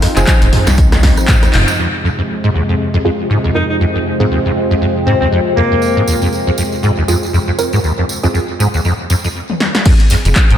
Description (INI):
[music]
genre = acid house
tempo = 119 BPM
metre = 4/4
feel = swing 57% on 16ths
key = F minor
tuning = A4 = 443 Hz
[part]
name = warm analog pad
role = sustained chords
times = 0.0-10.6 s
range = F2 to Ab4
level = -20 LUFS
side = equal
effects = chorus, sidechain pumping
[part]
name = liquid acid bass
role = riff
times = 0.0-10.6 s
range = Eb2 to Ab2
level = -16 LUFS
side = equal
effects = ensemble chorus, sidechain pumping, analog delay
[part]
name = punchy analog drum machine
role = drums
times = 0.0-1.8, 9.5-10.6 s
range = crash cymbal, handclaps, hi-hat, rim click, snare drum, toms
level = -16 LUFS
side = equal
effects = analog delay
[part]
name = filtered dub chord stab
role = stabs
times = 0.2-9.3 s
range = C4 to Bb4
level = -21 LUFS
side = right 3 dB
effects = chorus, analog delay
[part]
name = warm sub bass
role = bass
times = 0.2-1.6, 10.2-10.6 s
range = Eb1 to C2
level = -13 LUFS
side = equal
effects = tube saturation, sidechain pumping
[part]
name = tambourine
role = percussion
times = 0.2-1.8, 5.8-10.5 s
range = none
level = -26 LUFS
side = right 4 dB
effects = analog delay
[part]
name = electronic kick drum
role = drums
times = 0.3-1.4, 9.9-10.5 s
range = none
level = -11 LUFS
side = equal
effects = none
[part]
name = warbly tape-like pad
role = texture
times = 3.2-9.3 s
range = F4 to G5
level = -21 LUFS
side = left 2 dB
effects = chorus, built-in reverb, phaser, sidechain pumping
[part]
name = breathy alto saxophone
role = melody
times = 3.6-6.3 s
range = Bb3 to Eb4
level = -19 LUFS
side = equal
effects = analog delay
[sound]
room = moderate echo chamber reverb, RT60 2.2 s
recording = echo-heavy mix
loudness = -11 LUFS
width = side -10 dB against mid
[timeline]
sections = 0.0-1.8 A section; 1.8-9.9 B section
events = drop 0.0-1.8; drum fill 1.5, 9.5-9.9; band accent 1.5; filter sweep on synth stab 1.8-9.9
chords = 0.0 Fm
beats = 0.27 0.78 1.28 | 1.79 2.29 2.79 3.30 | 3.80 4.31 4.81 5.32 | 5.82 6.33 6.83 7.33 | 7.84 8.34 8.85 9.35 | 9.85 10.36